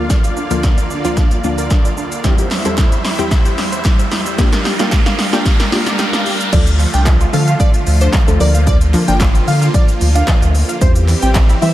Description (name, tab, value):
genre	dance-pop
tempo	112 BPM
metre	4/4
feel	straight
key	unclear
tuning	A4 = 440 Hz
part	wide unison pluck	accompaniment	0.0-11.7 s	D2 to C5	-21 LUFS	left 1 dB	sidechain pumping
part	supersaw pad	sustained chords	0.0-11.7 s	E2 to F5	-22 LUFS	right 1 dB	phaser, sidechain pumping
part	riser	sound effects	0.2-6.5 s	none	-26 LUFS	equal	none
part	tight sequenced synth	arpeggios	0.1-11.7 s	E3 to G5	-25 LUFS	right 2 dB	chorus, sidechain pumping, analog delay
part	house drum kit	drums	0.1-11.7 s	crash cymbal, handclaps, hi-hat, kick drum, shaker, snare drum	-14 LUFS	equal	none
part	group handclap	percussion	2.5-11.5 s	none	-31 LUFS	right 4 dB	none
part	plucky unison lead	melody	6.5-11.7 s	C5 to G5	-22 LUFS	equal	sidechain pumping, analog delay
part	warm sub bass	bass	6.5-11.7 s	G1 to E3	-13 LUFS	equal	sidechain pumping
room	little or no reverb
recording	none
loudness	-11 LUFS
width	side -14 dB against mid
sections	0.0-6.5 A section; 6.5-11.7 B section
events	build-up 0.0-6.5; drum fill 0.0-6.5; riser 0.2-6.5; drop 6.5-11.7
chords	0.0 Bb/D; 2.2 C/E; 4.4 Gm7; 6.5 Dm; 8.4 Bb; 10.8 C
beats	| 0.10 0.64 1.17 1.71 | 2.24 2.78 3.31 3.85 | 4.39 4.92 5.46 5.99 | 6.53 7.06 7.60 8.14 | 8.67 9.21 9.74 10.28 | 10.81 11.35